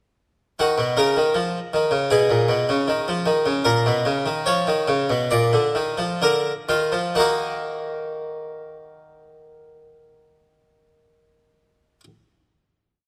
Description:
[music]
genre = classical, baroque-style two-part invention for harpsichord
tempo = 62-81 BPM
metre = 4/4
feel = straight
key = Eb minor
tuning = A4 = 441 Hz
[part]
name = harpsichord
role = solo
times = 0.6-12.0 s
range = Bb2 to D5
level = -21 LUFS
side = equal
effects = none
[sound]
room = moderate concert hall reverb, RT60 2.0 s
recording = close, detailed microphones, lossy compression artefacts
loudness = -21 LUFS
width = mono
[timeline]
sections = 0.6-7.2 exposition; 7.2-11.0 final chord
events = slowing down 0.6-9.1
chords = 0.6 Ebm; 2.1 Abm; 3.6 Eb5/Bb; 5.3 Bb; 7.2 Ebm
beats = | 0.59 1.34 2.09 2.86 | 3.65 4.47 5.32 6.21 | 7.16 8.12 9.08 10.05

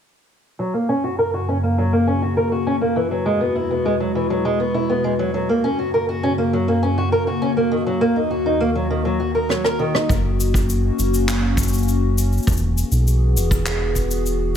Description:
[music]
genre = folktronica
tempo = 101 BPM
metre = 4/4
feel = straight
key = F# mixolydian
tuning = A4 = 440 Hz
[part]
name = warbly tape-like pad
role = sustained chords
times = 1.1-14.6 s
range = D#2 to G#4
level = -22 LUFS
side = left 2 dB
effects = chorus, built-in reverb, phaser
[part]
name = fingerpicked old ladder-braced acoustic guitar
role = arpeggios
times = 0.6-10.1 s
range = D#3 to A#4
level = -20 LUFS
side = right 1 dB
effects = low-pass filter, ping-pong delay
[part]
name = rim click, cabasa and handclaps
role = drums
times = 9.5-14.4 s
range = none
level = -26 LUFS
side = left 1 dB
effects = none
[part]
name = round analog bass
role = bass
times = 10.1-14.6 s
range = E1 to B1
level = -19 LUFS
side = equal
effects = none
[part]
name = kick drum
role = drums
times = 10.1-14.1 s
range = none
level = -21 LUFS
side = equal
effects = none
[sound]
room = light reverb, studio reverb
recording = none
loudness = -17 LUFS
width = side -8 dB against mid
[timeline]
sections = 0.6-10.1 A section; 10.1-14.6 B section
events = filter sweep on steel-string acoustic guitar 0.6-10.1; drum fill 9.5-10.1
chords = 0.6 F#; 3.0 Eadd9; 5.3 F#; 7.7 D#m; 10.1 F#; 12.5 Eadd9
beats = | 0.59 1.19 1.78 2.37 | 2.97 3.56 4.16 4.75 | 5.34 5.94 6.53 7.12 | 7.72 8.31 8.91 9.50 | 10.10 10.69 11.28 11.88 | 12.47 13.07 13.66 14.25

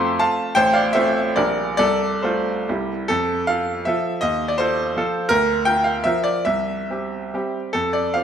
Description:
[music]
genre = classical, romantic triple-time dance for piano with dotted rhythms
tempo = 129-178 BPM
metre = 3/4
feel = rubato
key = F major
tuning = A4 = 440 Hz
[part]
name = clear baby grand piano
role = solo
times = 0.0-8.2 s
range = A1 to D6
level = -18 LUFS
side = equal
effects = none
[sound]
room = wet recital hall reverb, RT60 1.5 s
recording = none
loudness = -18 LUFS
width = side -8 dB against mid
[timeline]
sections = 0.0-3.1 A section; 3.1-8.2 B section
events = none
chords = 0.0 F; 0.6 F/A; 1.4 Gm7/Bb; 1.8 F/C; 2.7 C; 3.1 F; 4.2 F7/Eb; 5.3 Bb/D; 6.5 C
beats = 0.20 | 0.56 0.95 1.37 | 1.79 2.24 2.68 | 3.09 3.48 3.87 | 4.22 4.59 4.96 | 5.30 5.66 6.05 | 6.46 6.90 7.34 | 7.75 8.15

